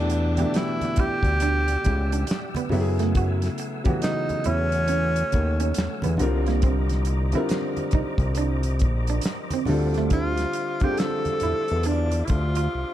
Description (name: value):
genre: R&B, neo-soul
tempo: 69 BPM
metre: 4/4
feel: swing 63% on 16ths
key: unclear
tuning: A4 = 440 Hz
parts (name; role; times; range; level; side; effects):
- breathy tenor saxophone; melody; 0.0-12.9 s; C#4 to A4; -27 LUFS; equal; none
- warm concert grand piano; accompaniment; 0.0-12.9 s; B2 to Bb4; -29 LUFS; left 1 dB; none
- tonewheel organ; sustained chords; 0.0-12.9 s; A3 to E6; -37 LUFS; left 1 dB; slow rotary speaker, chorus vibrato
- fat analog bass; bass; 0.0-12.8 s; Bb1 to F#2; -24 LUFS; equal; none
- electric guitar at the edge of break-up; second line; 0.1-12.7 s; A3 to G4; -32 LUFS; right 10 dB; none
- damped 70s drum kit; drums; 0.1-12.7 s; handclaps, hi-hat, kick drum, snare drum; -27 LUFS; equal; none
- congas; percussion; 0.4-12.5 s; none; -34 LUFS; right 1 dB; none
room: little or no reverb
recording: dark, warm production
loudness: -21 LUFS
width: side -12 dB against mid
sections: 0.0-12.9 A section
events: drum fill 12.7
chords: 0.0 Em9; 2.7 F#m9; 6.2 Cm9; 9.7 Dm9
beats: 0.54 1.41 2.28 | 3.15 4.02 4.89 5.76 | 6.63 7.50 8.37 9.24 | 10.11 10.97 11.85 12.71